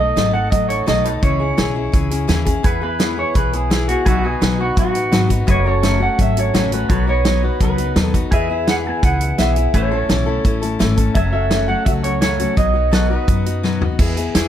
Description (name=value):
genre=honky-tonk and classic country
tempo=169 BPM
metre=4/4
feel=straight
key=unclear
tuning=A4 = 440 Hz
part: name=electric guitar through a small old amp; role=melody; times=0.0-13.6 s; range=F#4 to G#5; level=-21 LUFS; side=right 2 dB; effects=spring reverb
part: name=picked steel-string acoustic guitar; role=accompaniment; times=0.0-14.5 s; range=F#2 to A4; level=-21 LUFS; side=left 6 dB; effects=none
part: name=upright bass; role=bass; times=0.0-14.5 s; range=F#1 to F#2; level=-20 LUFS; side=equal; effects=none
part: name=natural country drum kit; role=drums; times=0.2-14.4 s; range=crash cymbal, hi-hat, kick drum, snare drum, toms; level=-19 LUFS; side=right 1 dB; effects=none
part: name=pedal steel guitar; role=sustained chords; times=2.6-14.0 s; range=F#4 to F#5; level=-29 LUFS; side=right 2 dB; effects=none
room=little or no reverb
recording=none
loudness=-14 LUFS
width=side -10 dB against mid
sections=0.0-14.0 A section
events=drum fill 13.6-14.0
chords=0.0 B7; 1.2 C#m; 2.6 E; 4.1 B; 5.5 F#m; 6.9 B; 8.3 E; 9.7 A; 11.2 F#m; 12.6 B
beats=0.17 0.52 0.88 | 1.23 1.58 1.94 2.29 | 2.65 3.00 3.36 3.71 | 4.07 4.42 4.77 5.13 | 5.48 5.84 6.19 6.54 | 6.90 7.25 7.61 7.96 | 8.32 8.67 9.03 9.38 | 9.73 10.09 10.44 10.80 | 11.15 11.51 11.86 12.22 | 12.57 12.93 13.28 13.64 | 13.99 14.35